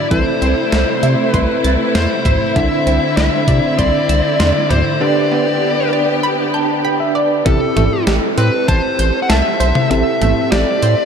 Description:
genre	synth-pop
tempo	98 BPM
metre	4/4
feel	straight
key	unclear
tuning	A4 = 442 Hz
part	dark smooth lead guitar	melody	0.0-11.1 s	A4 to F#5	-18 LUFS	left 1 dB	overdrive, analog delay, shimmer reverb
part	tine electric piano	accompaniment	0.0-11.1 s	C4 to A5	-20 LUFS	right 1 dB	medium stereo tremolo, shimmer reverb
part	rich studio string section	sustained chords	0.0-7.4 s	C3 to G4	-20 LUFS	equal	shimmer reverb
part	analog pluck	arpeggios	0.1-11.0 s	C3 to A6	-22 LUFS	right 1 dB	chorus, phaser, analog delay, shimmer reverb
part	round analog bass	bass	0.1-11.0 s	A1 to C3	-16 LUFS	equal	none
part	clean 12-bit digital drum machine	drums	0.1-11.0 s	hi-hat, kick drum, snare drum, toms	-20 LUFS	equal	none
room	wet huge ambient reverb, RT60 8.8 s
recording	dreamy mix soaked in reverb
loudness	-12 LUFS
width	side -7 dB against mid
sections	0.0-7.5 A section; 7.5-11.1 B section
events	tine electric piano fill 6.2-7.5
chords	0.1 Am/C; 2.6 Cadd9; 5.0 G; 7.5 Am7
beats	| 0.11 0.72 1.34 1.95 | 2.56 3.17 3.79 4.40 | 5.01 5.62 6.24 6.85 | 7.46 8.07 8.68 9.30 | 9.91 10.52

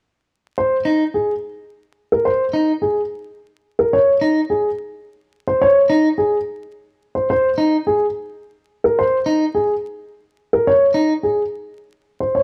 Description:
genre	classical, minimalist pattern music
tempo	107 BPM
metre	3/4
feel	straight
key	unclear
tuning	A4 = 440 Hz
part	dark grand piano	melody	0.6-12.4 s	Ab4 to Db5	-18 LUFS	equal	none
part	clean electric guitar	arpeggios	0.9-11.1 s	Eb4	-19 LUFS	equal	none
room	moderate large studio reverb, RT60 1.2 s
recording	close, detailed microphones, vinyl crackle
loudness	-18 LUFS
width	mono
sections	0.6-12.4 A section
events	none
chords	none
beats	| 0.57 1.13 1.69 | 2.25 2.81 3.38 | 3.94 4.50 5.06 | 5.62 6.18 6.74 | 7.30 7.86 8.42 | 8.98 9.54 10.10 | 10.66 11.23 11.79 | 12.35

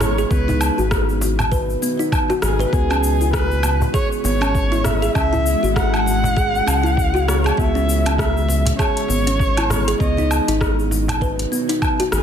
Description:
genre	organic downtempo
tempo	99 BPM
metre	4/4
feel	swing 57% on 16ths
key	C# minor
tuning	A4 = 440 Hz
part	dark kamancheh	melody	0.0-12.2 s	G#4 to F#5	-23 LUFS	equal	ping-pong delay
part	bowed-like drone	sustained chords	0.0-12.2 s	B2 to F#4	-28 LUFS	left 1 dB	built-in reverb, sidechain pumping
part	kalimba	arpeggios	0.0-12.2 s	B3 to B4	-23 LUFS	equal	vintage 12-bit sampler grit, low-pass filter, ping-pong delay
part	round analog bass	bass	0.0-12.2 s	G#1 to C#2	-20 LUFS	equal	sidechain pumping
part	deep house drum kit	drums	0.0-12.2 s	hi-hat, rim click, shaker, woodblock	-24 LUFS	equal	overdrive
part	cajon	percussion	0.0-12.1 s	none	-28 LUFS	right 2 dB	none
part	electronic kick drum	drums	0.3-12.0 s	none	-22 LUFS	equal	overdrive
room	light reverb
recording	dense, heavily limited modern master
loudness	-16 LUFS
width	side -8 dB against mid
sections	0.0-12.2 A section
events	none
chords	0.3 B; 2.7 C#m7; 5.2 F#m9; 7.6 C#m7; 10.0 B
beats	| 0.31 0.91 1.52 2.12 | 2.73 3.34 3.94 4.55 | 5.15 5.76 6.37 6.97 | 7.58 8.19 8.79 9.40 | 10.00 10.61 11.21 11.82

